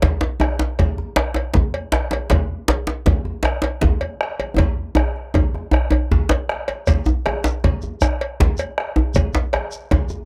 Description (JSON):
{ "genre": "west african traditional, West African drum ensemble", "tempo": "105 BPM (dotted quarters)", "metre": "12/8", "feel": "straight", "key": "none", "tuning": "none", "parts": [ { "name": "bombo", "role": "percussion", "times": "0.0-10.1 s", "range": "none", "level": "-24 LUFS", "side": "equal", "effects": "none" }, { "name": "cowbell", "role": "percussion", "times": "0.0-10.1 s", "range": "none", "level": "-28 LUFS", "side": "equal", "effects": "none" }, { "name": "djembe", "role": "percussion", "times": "0.0-10.3 s", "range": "none", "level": "-27 LUFS", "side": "equal", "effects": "none" }, { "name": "djembe", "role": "percussion", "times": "0.0-10.1 s", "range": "none", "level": "-23 LUFS", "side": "equal", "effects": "none" }, { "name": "shekere", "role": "percussion", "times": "6.9-10.2 s", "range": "none", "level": "-29 LUFS", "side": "equal", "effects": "none" } ], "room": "light reverb", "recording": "dark, warm production", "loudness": "-20 LUFS", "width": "mono", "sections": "0.0-6.9 A section; 6.9-10.3 B section", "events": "drum fill 4.6-6.9", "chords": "none", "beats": "| 0.02 0.59 1.17 1.74 | 2.31 2.88 3.45 4.02 | 4.59 5.16 5.73 6.30 | 6.87 7.44 8.01 8.58 | 9.15 9.72" }